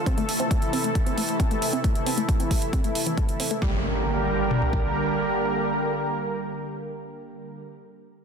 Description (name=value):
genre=uplifting trance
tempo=135 BPM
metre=4/4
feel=straight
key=G dorian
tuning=A4 = 440 Hz
part: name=lush unison pad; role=sustained chords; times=0.0-7.6 s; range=C3 to Bb4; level=-26 LUFS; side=right 1 dB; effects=chorus, sidechain pumping
part: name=analog pluck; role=arpeggios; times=0.1-3.8 s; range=E3 to A4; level=-30 LUFS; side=left 1 dB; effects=chorus, sidechain pumping, digital delay
part: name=electronic hi-hat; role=drums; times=0.1-3.6 s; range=none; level=-32 LUFS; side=right 4 dB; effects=overdrive
part: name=house drum kit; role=drums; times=0.1-4.8 s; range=kick drum, toms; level=-24 LUFS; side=equal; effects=none
part: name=impact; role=sound effects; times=3.6-7.7 s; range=none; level=-31 LUFS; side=equal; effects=none
room=moderate digital room reverb, RT60 0.9 s, digital ambience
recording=dense, heavily limited modern master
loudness=-22 LUFS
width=side -6 dB against mid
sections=0.0-3.6 A section; 3.6-7.2 B section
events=filter sweep on synth pluck 0.0-3.6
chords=0.1 Am; 3.6 Gm